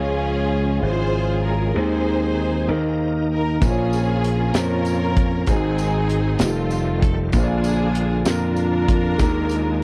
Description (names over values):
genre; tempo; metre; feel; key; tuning
slow gospel; 64 BPM (dotted quarters); 6/8; straight; unclear; A4 = 440 Hz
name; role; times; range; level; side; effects
clear studio string section; melody; 0.0-9.8 s; A3 to C5; -28 LUFS; equal; none
dark concert grand piano; accompaniment; 0.0-9.8 s; Ab2 to D5; -27 LUFS; equal; none
bright tonewheel organ; sustained chords; 0.0-9.8 s; D3 to Bb4; -32 LUFS; equal; none
slap bass; bass; 0.0-9.8 s; F1 to F2; -24 LUFS; equal; none
modern studio drum kit; drums; 3.6-9.7 s; hi-hat, kick drum, snare drum; -23 LUFS; equal; none
tambourine; percussion; 3.6-9.8 s; none; -41 LUFS; equal; none
room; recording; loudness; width
little or no reverb; dry, close 1970s-style studio recording; -20 LUFS; mono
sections
0.0-9.8 A section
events
none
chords
0.0 Db; 1.8 Ab/Eb; 2.7 Eb5; 3.6 Bbm; 5.5 Ab7; 6.4 F9; 7.3 Bb; 9.2 Ebsus4